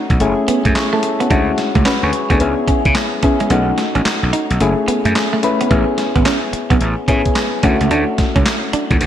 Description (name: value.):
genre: R&B, new jack swing.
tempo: 109 BPM.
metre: 4/4.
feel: swing 63% on 16ths.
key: unclear.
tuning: A4 = 440 Hz.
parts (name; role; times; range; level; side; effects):
soft electric-piano-like synth keys; accompaniment; 0.0-9.1 s; G#3 to C#5; -17 LUFS; left 3 dB; chorus, tube saturation.
clean electric guitar; riff; 0.0-9.0 s; G#3 to D#4; -21 LUFS; right 4 dB; lush chorus.
gritty slap bass; bass; 0.1-9.1 s; F#1 to C#3; -17 LUFS; equal; overdrive.
crisp 8-bit digital drum machine; drums; 0.1-9.1 s; handclaps, hi-hat, kick drum, snare drum; -18 LUFS; equal; gated reverb.
room: moderate lush hall reverb, RT60 1.8 s, digital ambience.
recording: bright 1980s-style digital production.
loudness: -13 LUFS.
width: side -10 dB against mid.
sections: 0.0-5.7 A section; 5.7-9.1 B section.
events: kick muted 3.5-5.7.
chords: 0.2 F#m7; 1.3 Dmaj9#11; 2.4 C#m7; 3.5 B7; 4.6 F#m7; 5.7 Amaj7; 7.6 Dmaj7.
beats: 0.20 0.75 | 1.30 1.85 2.40 2.96 | 3.51 4.06 4.61 5.16 | 5.71 6.26 6.81 7.36 | 7.91 8.46 9.01.